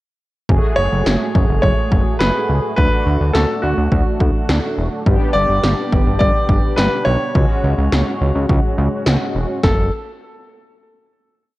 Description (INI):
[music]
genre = synth-pop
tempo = 105 BPM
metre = 4/4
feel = straight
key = F# minor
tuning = A4 = 440 Hz
[part]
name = mellow synth brass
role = accompaniment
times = 0.5-9.6 s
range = G#3 to G#4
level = -22 LUFS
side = equal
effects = chorus
[part]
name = fat analog bass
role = bass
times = 0.5-9.9 s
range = E1 to D2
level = -17 LUFS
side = equal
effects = none
[part]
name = 80s electronic pad drums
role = drums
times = 0.5-9.8 s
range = kick drum, snare drum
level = -17 LUFS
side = equal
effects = none
[part]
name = clear baby grand piano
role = melody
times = 0.8-9.9 s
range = F#4 to D5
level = -20 LUFS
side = equal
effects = none
[sound]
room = light reverb, digital ambience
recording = worn, warbling old tape, cassette tape, warbly pitch drift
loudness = -14 LUFS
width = side -18 dB against mid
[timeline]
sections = 0.5-9.6 verse; 9.6-11.6 final chord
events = none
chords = 0.5 F#madd9; 2.8 D; 5.1 G; 7.3 C#sus4; 9.6 N.C.